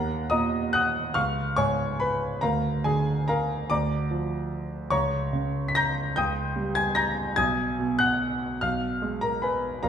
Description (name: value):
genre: classical, piano waltz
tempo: 135-157 BPM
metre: 3/4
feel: rubato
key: unclear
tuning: A4 = 442 Hz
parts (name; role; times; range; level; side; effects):
- clear concert grand piano; solo; 0.0-9.9 s; Bb1 to Cb7; -24 LUFS; equal; none
room: wet recital hall reverb, RT60 1.5 s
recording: minimal, uncompressed stereo recording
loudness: -24 LUFS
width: side -8 dB against mid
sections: 0.0-9.9 A section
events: none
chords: 0.0 Ebm; 1.2 Db; 2.4 Bb/D; 4.9 Eb7/Db; 7.4 Abm/Cb